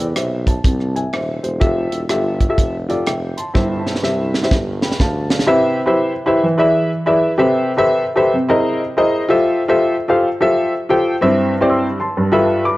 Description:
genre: uptempo gospel.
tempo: 125 BPM.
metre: 4/4.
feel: swing 64% on 8ths.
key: C major.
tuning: A4 = 439 Hz.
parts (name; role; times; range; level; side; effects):
dark upright piano; accompaniment; 0.0-12.8 s; G2 to E6; -15 LUFS; equal; none.
warm tuba; bass; 0.0-5.4 s; Eb1 to E2; -23 LUFS; equal; none.
tight funk drum kit; drums; 0.2-5.5 s; hi-hat, kick drum, rim click, snare drum; -18 LUFS; equal; none.
room: light reverb.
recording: worn, warbling old tape, cassette tape, warbly pitch drift.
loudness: -14 LUFS.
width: side -18 dB against mid.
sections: 0.0-5.5 A section; 5.5-12.8 B section.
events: drum fill 3.5-5.5.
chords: 0.0 Amadd9; 0.7 Ammaj7; 1.6 Fmaj9; 3.5 C/G; 4.5 G5; 5.5 Cmaj7; 6.4 E7; 7.4 Am9/C; 8.3 C7alt; 9.3 Fmaj9; 11.2 C/G; 12.2 G13.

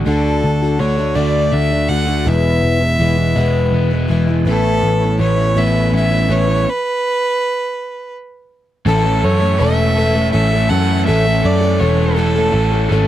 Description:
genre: rock.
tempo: 54 BPM (dotted quarters).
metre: 6/8.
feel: straight.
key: A major.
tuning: A4 = 440 Hz.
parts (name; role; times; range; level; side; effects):
picked plugged-in twelve-string acoustic guitar; accompaniment; 0.0-13.1 s; E2 to A4; -21 LUFS; left 5 dB; none.
crunchy overdriven guitar; riff; 0.0-13.1 s; E2 to A4; -20 LUFS; right 2 dB; none.
picked electric bass; bass; 0.0-13.1 s; E1 to F#2; -16 LUFS; equal; none.
rich fiddle; melody; 0.1-13.0 s; A4 to F#5; -19 LUFS; right 1 dB; none.
tonewheel organ; sustained chords; 4.5-13.1 s; A4 to C#6; -29 LUFS; right 1 dB; chorus vibrato, slow rotary speaker.
room: little or no reverb.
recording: dry, close 1970s-style studio recording.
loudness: -13 LUFS.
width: side -12 dB against mid.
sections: 0.1-8.9 A section; 8.9-13.1 B section.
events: stop 6.7-8.9.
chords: 0.1 D; 2.3 E; 4.5 Aadd9; 6.7 N.C.; 8.9 A.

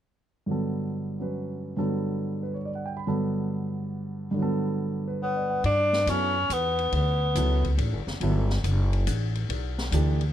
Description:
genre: modal jazz.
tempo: 140 BPM.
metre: 3/4.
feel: swing 67% on 8ths.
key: G lydian.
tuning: A4 = 444 Hz.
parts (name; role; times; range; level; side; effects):
warm grand piano; accompaniment; 0.5-10.2 s; G2 to B5; -28 LUFS; right 1 dB; none.
warm tenor saxophone; melody; 5.2-7.8 s; B3 to D4; -25 LUFS; left 1 dB; none.
upright bass; bass; 5.6-10.3 s; F#1 to G2; -25 LUFS; equal; none.
open jazz drum kit; drums; 5.6-10.3 s; hi-hat, kick drum, ride cymbal, snare drum; -34 LUFS; left 4 dB; none.
room: light reverb.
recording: close, detailed microphones.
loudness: -24 LUFS.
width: side -11 dB against mid.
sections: 0.5-5.6 A section; 5.6-10.3 B section.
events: none.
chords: 0.5 Gmaj7.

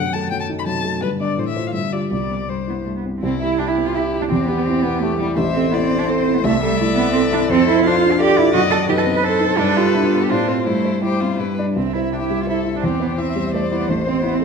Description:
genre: quick classical-period movement for piano quartet.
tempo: 169 BPM.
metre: 3/4.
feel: straight.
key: C major.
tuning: A4 = 441 Hz.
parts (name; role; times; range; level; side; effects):
warm violin; melody; 0.0-14.4 s; D4 to B5; -25 LUFS; left 7 dB; none.
dark cello; second line; 0.0-14.4 s; C3 to B4; -20 LUFS; right 7 dB; none.
dark grand piano; accompaniment; 0.0-14.4 s; A1 to D5; -20 LUFS; left 2 dB; none.
warm violin; second line; 3.2-14.4 s; G3 to F5; -26 LUFS; left 4 dB; none.
room: wet scoring stage reverb, RT60 1.6 s.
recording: minimal, uncompressed stereo recording.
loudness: -16 LUFS.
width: side -5 dB against mid.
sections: 0.0-3.2 A section; 3.2-11.8 B section; 11.8-14.4 B section.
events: none.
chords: 0.0 F#dim7; 1.0 G5; 1.4 F/A; 1.7 G5; 2.1 C; 4.3 C/E; 5.4 Am; 6.4 Am/C; 7.5 Dm7/F; 8.5 F#dim7; 9.6 G; 10.3 F/A; 10.7 C/G; 11.4 G; 11.8 C; 12.8 C/E; 13.9 Am.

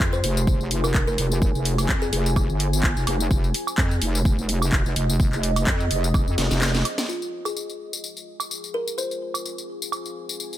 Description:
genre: bass house.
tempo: 127 BPM.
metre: 4/4.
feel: swing 55% on 16ths.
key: F minor.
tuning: A4 = 440 Hz.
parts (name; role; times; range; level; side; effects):
wobble bass; bass; 0.0-6.8 s; F1 to F2; -23 LUFS; equal; chorus, overdrive, sidechain pumping.
electronic kick drum; drums; 0.0-6.2 s; none; -22 LUFS; equal; studio ambience.
house drum kit; drums; 0.0-10.6 s; handclaps, hi-hat, snare drum, tambourine, woodblock; -27 LUFS; equal; studio ambience.
deep dark ambient pad; texture; 0.0-10.6 s; F4 to C6; -32 LUFS; left 1 dB; chorus, built-in reverb, sidechain pumping.
kalimba; melody; 0.1-2.2, 7.1-9.4 s; F4 to C5; -31 LUFS; left 1 dB; ping-pong delay.
room: little or no reverb.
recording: none.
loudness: -21 LUFS.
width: side -13 dB against mid.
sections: 0.0-7.1 A section; 7.1-10.6 B section.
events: drop 0.0-7.1; drum fill 6.4-7.1; kick drops out 6.6-7.1.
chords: 0.0 Fm.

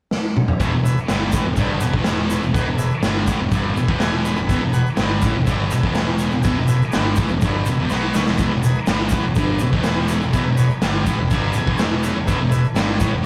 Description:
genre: garage rock duo or trio.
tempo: 123 BPM.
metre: 4/4.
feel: straight.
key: E major.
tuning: A4 = 445 Hz.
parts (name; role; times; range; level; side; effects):
raw garage drum kit; drums; 0.1-13.1 s; crash cymbal, kick drum, snare drum, toms; -23 LUFS; equal; none.
combo organ; sustained chords; 0.6-13.2 s; G#4 to B5; -32 LUFS; equal; none.
thick fuzz guitar; riff; 0.6-13.3 s; E2 to B3; -23 LUFS; equal; distortion.
growling picked electric bass; bass; 0.6-13.2 s; E1 to D2; -30 LUFS; equal; overdrive.
tube shaker; percussion; 0.6-13.1 s; none; -42 LUFS; equal; none.
room: moderate small room reverb, RT60 0.5 s.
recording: rough rehearsal-room recording, tube saturation.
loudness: -19 LUFS.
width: mono.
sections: 0.6-13.3 A section.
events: drum fill 0.1-0.6, 7.9-8.4; transistor combo organ fill 3.5-4.5, 10.8-12.3.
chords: 0.0 N.C.; 0.6 E.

